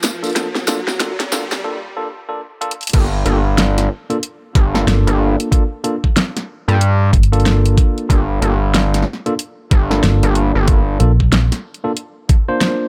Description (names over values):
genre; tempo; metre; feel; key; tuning
glitch hop; 93 BPM; 4/4; swing 61% on 16ths; G minor; A4 = 442 Hz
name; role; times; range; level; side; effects
warbly tape-like pad; sustained chords; 0.0-1.6 s; G2 to Bb4; -39 LUFS; equal; none
pop drum kit; drums; 0.0-12.8 s; crash cymbal, hi-hat, snare drum; -21 LUFS; equal; overdrive
tambourine; percussion; 0.0-1.6 s; none; -28 LUFS; equal; none
riser; sound effects; 0.0-1.6 s; none; -30 LUFS; equal; none
tine electric piano; stabs; 0.2-12.9 s; Bb3 to C5; -24 LUFS; equal; sidechain pumping, dub echo
electronic kick drum; drums; 0.4-12.5 s; none; -16 LUFS; equal; overdrive, high-pass filter on kick, high-pass filter on room
gritty driven synth bass; bass; 2.9-11.0 s; G1 to G2; -17 LUFS; equal; tube saturation
vintage muted fingered electric bass; bass; 4.9-11.5 s; G1 to Bb1; -15 LUFS; equal; none
room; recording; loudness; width
digital ambience; high-pass filter; -16 LUFS; mono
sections
0.0-2.9 A section; 2.9-12.9 B section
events
build-up 0.0-2.9; drum fill 0.0-1.6, 2.6-2.9; riser 0.0-1.6; filter sweep on tine electric piano 0.0-2.9; break 1.6-2.9; drop 2.9-12.9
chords
0.0 Gm9